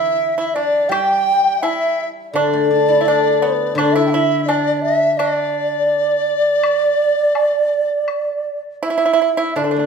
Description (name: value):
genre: chinese traditional, Chinese chamber ensemble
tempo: 84 BPM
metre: 4/4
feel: rubato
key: D zhi mode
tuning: A4 = 440 Hz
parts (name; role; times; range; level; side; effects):
- xiao; melody; 0.0-9.9 s; B4 to G5; -17 LUFS; right 4 dB; none
- bright large dizi; second line; 0.0-8.8 s; D5 to G5; -21 LUFS; left 8 dB; none
- pipa; second line; 0.0-9.8 s; B3 to G4; -22 LUFS; right 5 dB; none
- guzheng; accompaniment; 0.0-9.9 s; D3 to A4; -20 LUFS; left 5 dB; none
- woodblock; percussion; 0.9-8.3 s; none; -27 LUFS; left 7 dB; none
room: moderate recital hall reverb, RT60 1.6 s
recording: minimal, uncompressed stereo recording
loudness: -14 LUFS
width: side -6 dB against mid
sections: 0.0-9.6 A section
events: none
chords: none